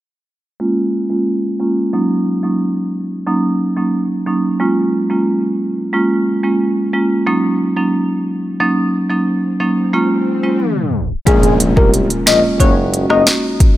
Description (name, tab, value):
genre	dancehall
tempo	90 BPM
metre	4/4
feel	straight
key	unclear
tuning	A4 = 439 Hz
part	marimba with medium mallets	accompaniment	0.6-13.2 s	Gb3 to Gb4	-15 LUFS	right 1 dB	low-pass filter
part	swell and impact	sound effects	10.1-13.8 s	none	-24 LUFS	left 2 dB	none
part	soft octave-layered synth lead	melody	11.3-13.2 s	Ab4 to Eb5	-16 LUFS	left 3 dB	chorus, phaser, digital delay
part	mellow tuba	bass	11.3-13.3 s	Gb1 to C2	-18 LUFS	equal	none
part	afro-pop drum kit	drums	11.3-13.8 s	hi-hat, kick drum, rim click, snare drum	-13 LUFS	equal	none
room	light reverb, digital ambience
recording	tape stop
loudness	-13 LUFS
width	side -14 dB against mid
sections	0.6-11.3 A section; 11.3-13.8 B section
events	filter sweep on marimba 0.6-11.3; swell 10.1-11.3; tape stop 10.6-11.3; impact 11.3-13.8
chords	0.6 Bbm7; 1.9 Gb6; 4.6 Db6; 7.3 Gb6; 9.9 Db6; 11.3 Bbm7; 12.6 Gb6